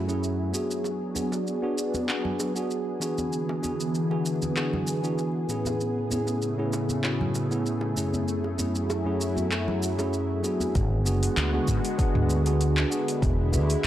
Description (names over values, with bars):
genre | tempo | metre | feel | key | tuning
sunset chillout | 97 BPM | 4/4 | straight | unclear | A4 = 439 Hz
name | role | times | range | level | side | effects
bell-like tine electric piano | accompaniment | 0.0-13.9 s | F#2 to G#4 | -28 LUFS | equal | auto-pan, tape echo
lush unison pad | sustained chords | 0.0-13.9 s | C#3 to G#4 | -30 LUFS | left 1 dB | chorus, phaser
smooth R&B drum kit | drums | 0.1-13.9 s | handclaps, hi-hat, shaker, toms | -32 LUFS | equal | none
bongos and congas | percussion | 0.8-10.7 s | none | -35 LUFS | right 1 dB | none
mellow fretless electric bass | bass | 10.8-13.9 s | E1 to G#2 | -24 LUFS | equal | tube saturation
electronic kick drum | drums | 10.8-13.4 s | none | -26 LUFS | equal | overdrive
room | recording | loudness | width
moderate recital hall reverb, RT60 1.6 s | dry, gritty hardware recording, cassette tape | -24 LUFS | side -12 dB against mid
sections
0.0-10.8 A section; 10.8-13.9 B section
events
filter sweep on analog synth pad 0.0-10.8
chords
0.0 F#m9; 0.9 G#m7b5; 3.0 E7; 5.8 Amaj9; 8.3 F#m9; 10.8 G#m7b5; 12.9 E7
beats
0.23 | 0.85 1.47 2.09 2.71 | 3.33 3.95 4.57 5.18 | 5.80 6.42 7.04 7.66 | 8.28 8.89 9.51 10.13 | 10.75 11.37 11.99 12.61 | 13.22 13.84